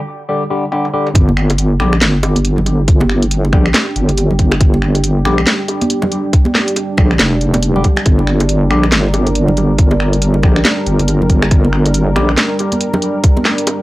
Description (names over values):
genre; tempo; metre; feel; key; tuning
deep dubstep; 139 BPM; 4/4; swing 60% on 16ths, half-time; G minor; A4 = 440 Hz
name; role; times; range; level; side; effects
barky tine electric piano; stabs; 0.3-12.3 s; D3 to G4; -21 LUFS; left 2 dB; overdrive, phaser, dub echo
garage drum kit; drums; 0.7-13.8 s; finger snaps, hi-hat, snare drum, toms; -16 LUFS; equal; high-pass filter on snare, high-pass filter on hats, high-pass filter on toms, high-pass filter on room
bongos and congas; percussion; 1.1-13.8 s; none; -21 LUFS; right 1 dB; dub echo
dark analog pad; sustained chords; 1.8-13.8 s; G3 to Bb4; -19 LUFS; right 1 dB; chorus
deep soft wobble bass; bass; 1.2-12.4 s; F1 to Bb1; -13 LUFS; equal; chorus, high-pass filter
electronic kick drum; drums; 1.2-13.3 s; none; -11 LUFS; equal; none
room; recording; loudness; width
digital ambience; dry, gritty hardware recording, transformer saturation; -11 LUFS; side -18 dB against mid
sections
0.0-1.2 A section; 1.2-13.8 B section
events
break 0.0-1.2; build-up 0.0-1.2; filter sweep on tine electric piano 0.0-1.2; drum fill 0.7-1.2; drop 1.2-13.8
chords
0.0 G5